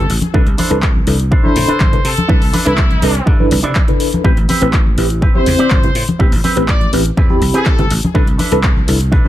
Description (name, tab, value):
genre	filtered disco house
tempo	123 BPM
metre	4/4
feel	straight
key	unclear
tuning	A4 = 440 Hz
part	brilliant trumpet section	melody	0.0-9.3 s	E4 to D5	-22 LUFS	left 2 dB	sidechain pumping, low-pass filter, ping-pong delay
part	mellow reed electric piano	accompaniment	0.0-9.3 s	C4 to B5	-18 LUFS	equal	fast tremolo, phaser, sidechain pumping, low-pass filter
part	dry thumbed slap bass	bass	0.0-9.2 s	G1 to C3	-17 LUFS	equal	sidechain pumping, low-pass filter
part	electric guitar with an envelope filter	riff	0.1-9.3 s	C4 to D5	-22 LUFS	right 3 dB	sidechain pumping, low-pass filter
part	punchy analog drum machine	drums	0.1-9.1 s	handclaps, hi-hat	-22 LUFS	left 2 dB	none
part	tube shaker and congas	percussion	0.1-9.3 s	none	-21 LUFS	left 2 dB	sidechain pumping on perc, low-pass filter on perc
part	electronic kick drum	drums	0.3-9.2 s	none	-14 LUFS	equal	none
room	digital ambience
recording	none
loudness	-11 LUFS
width	side -13 dB against mid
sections	0.0-9.3 A section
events	filter sweep 0.0-9.3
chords	0.0 Cmaj13